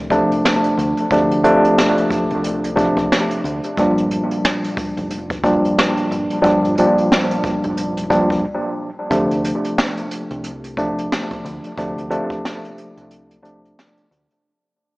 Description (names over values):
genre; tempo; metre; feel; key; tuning
hip hop, boom-bap hip-hop; 90 BPM; 4/4; swing 59% on 16ths; unclear; A4 = 444 Hz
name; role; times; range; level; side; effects
deep dub fingered electric bass; bass; 0.0-14.3 s; F1 to D2; -29 LUFS; equal; none
mellow tine electric piano; accompaniment; 0.1-14.1 s; Bb2 to D4; -17 LUFS; equal; medium stereo tremolo, high-pass filter, low-pass filter, analog delay
jazz brush drum kit; drums; 0.1-14.4 s; hi-hat, kick drum, snare drum; -22 LUFS; equal; none
room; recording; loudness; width
light reverb, small room ambience; echo-heavy mix, small speaker sound; -16 LUFS; side -22 dB against mid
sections
0.0-9.1 A section; 9.1-14.4 B section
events
break 8.4-9.1, 13.1-14.4; fade-out 9.1-14.4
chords
0.0 Dm7; 3.8 Gm7; 9.1 Dm7